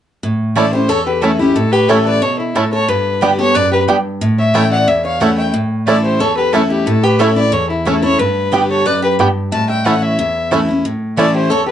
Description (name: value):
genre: bluegrass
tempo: 181 BPM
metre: 4/4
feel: straight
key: A mixolydian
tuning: A4 = 440 Hz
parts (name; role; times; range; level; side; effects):
- picked steel-string acoustic guitar; accompaniment; 0.2-11.7 s; E2 to G4; -16 LUFS; equal; none
- bluegrass banjo; melody; 0.6-11.3 s; A3 to G4; -17 LUFS; right 2 dB; none
- clear fiddle; melody; 0.6-11.7 s; E4 to A5; -17 LUFS; left 1 dB; none
- lap resonator guitar; second line; 0.6-11.7 s; E4 to E5; -20 LUFS; left 2 dB; none
- mandolin; stabs; 0.6-11.3 s; A3 to A5; -19 LUFS; right 5 dB; none
room: moderate small room reverb, RT60 0.5 s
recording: dark, warm production, nothing above 10.9 kHz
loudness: -12 LUFS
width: side -10 dB against mid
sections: 0.2-10.8 A section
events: none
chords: 0.2 A; 2.9 G; 4.2 A; 8.2 G; 9.5 A